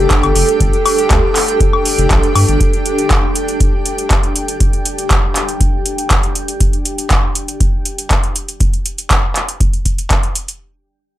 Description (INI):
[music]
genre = acid house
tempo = 120 BPM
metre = 4/4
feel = straight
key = unclear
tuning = A4 = 440 Hz
[part]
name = dark analog pad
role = sustained chords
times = 0.0-6.6 s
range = A4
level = -20 LUFS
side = right 3 dB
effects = chorus, sidechain pumping
[part]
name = saturated sub bass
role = bass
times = 0.0-2.6 s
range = F1 to G2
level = -15 LUFS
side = equal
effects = sidechain pumping
[part]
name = granular cloud pad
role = texture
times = 0.0-6.6 s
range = D4 to G5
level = -20 LUFS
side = left 1 dB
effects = built-in reverb, sidechain pumping
[part]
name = booming analog drum machine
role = drums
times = 0.1-10.6 s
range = handclaps, hi-hat, woodblock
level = -17 LUFS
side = equal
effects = overdrive
[part]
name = electronic kick drum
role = drums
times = 0.1-10.2 s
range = none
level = -15 LUFS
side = equal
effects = none
[sound]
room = light reverb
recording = none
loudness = -12 LUFS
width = side -14 dB against mid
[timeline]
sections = 0.0-10.6 A section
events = none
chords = 0.0 G5